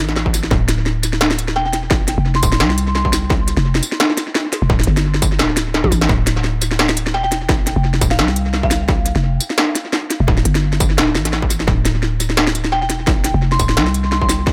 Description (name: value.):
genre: half-time drum and bass.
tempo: 172 BPM.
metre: 4/4.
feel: swing 55% on 16ths, half-time.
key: D minor.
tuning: A4 = 440 Hz.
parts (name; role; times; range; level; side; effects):
growling 808-style bass; bass; 0.0-14.5 s; D1 to C2; -20 LUFS; equal; none.
industrial drum kit; drums; 0.1-14.5 s; hi-hat, snare drum, tambourine, toms; -21 LUFS; equal; overdrive, studio reverb, tape echo.
electronic kick drum; drums; 0.3-14.5 s; none; -20 LUFS; equal; distortion, overdrive, studio reverb.
soft synth bell; melody; 1.6-3.1, 7.1-9.1, 12.7-14.3 s; F5 to C6; -26 LUFS; equal; chorus, vintage 12-bit sampler grit, dub echo.
room: digital ambience.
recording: echo-heavy mix.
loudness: -17 LUFS.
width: mono.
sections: 0.0-14.5 A section.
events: drum fill 5.7-6.1.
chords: 0.0 Dsus2.